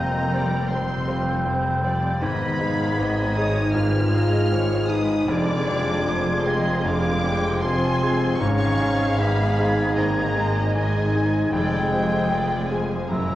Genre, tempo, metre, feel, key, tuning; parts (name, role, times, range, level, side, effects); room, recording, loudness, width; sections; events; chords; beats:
cinematic; 77 BPM; 4/4; rubato; A4 = 440 Hz
clear symphonic violin section; melody; 0.0-13.4 s; G5 to E#6; -31 LUFS; left 1 dB
mellow clarinet; second line; 0.0-13.4 s; C4 to F4; -30 LUFS; equal
mellow hollow silver concert flute; second line; 0.0-13.4 s; E6 to G#6; -31 LUFS; equal
warm symphonic violin section; second line; 0.0-13.4 s; A#4 to Ab5; -32 LUFS; equal
clear concert grand piano; accompaniment; 0.0-13.4 s; F1 to C5; -27 LUFS; equal
rich symphonic viola section; accompaniment; 0.0-13.4 s; F#3 to G#4; -32 LUFS; right 1 dB
mellow French horn section; sustained chords; 0.0-13.4 s; Ab3 to E#4; -28 LUFS; left 1 dB
concert harp; arpeggios; 0.0-13.4 s; F2 to C5; -30 LUFS; left 4 dB
rich studio cello section; bass; 0.0-13.4 s; F2 to G#2; -28 LUFS; right 1 dB; tube saturation
warm symphonic double bass section; bass; 0.0-13.4 s; F1 to G#1; -29 LUFS; right 2 dB; transformer saturation
timpani; percussion; 13.1-13.3 s; F#2; -32 LUFS; right 2 dB
wet scoring stage reverb, RT60 1.6 s; worn, warbling old tape, cassette tape, warbly pitch drift; -19 LUFS; side -14 dB against mid
0.0-13.4 A section
timpani fill 13.1
0.0 Fmadd9; 2.2 G#m; 5.3 Fmadd9; 8.4 G#m; 11.5 Fmadd9
0.70 1.46 | 2.22 2.98 3.75 4.52 | 5.29 6.07 6.85 7.62 | 8.40 9.18 9.96 10.74 | 11.52 12.30 13.11